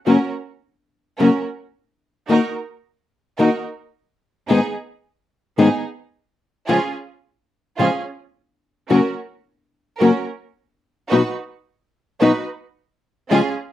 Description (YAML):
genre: tango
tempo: 109 BPM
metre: 4/4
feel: rubato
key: F# major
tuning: A4 = 440 Hz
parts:
  - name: nylon-string guitar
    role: accompaniment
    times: 0.1-13.4 s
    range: F#2 to G#4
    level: -16 LUFS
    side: left 3 dB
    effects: none
  - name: clear symphonic string section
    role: stabs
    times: 0.1-13.5 s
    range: B3 to B4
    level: -21 LUFS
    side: right 4 dB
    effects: slapback echo
room: light reverb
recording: recorded outdoors, with no room sound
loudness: -17 LUFS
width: side -13 dB against mid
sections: 0.1-13.7 A section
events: none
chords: 0.1 F#; 2.3 D#m; 4.5 G#m; 6.7 C#; 8.9 F#; 11.1 B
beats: | 0.07 0.63 1.19 1.75 | 2.30 2.85 3.40 3.95 | 4.50 5.05 5.59 6.14 | 6.69 7.24 7.79 8.35 | 8.91 9.46 10.01 10.56 | 11.12 11.67 12.22 12.76 | 13.31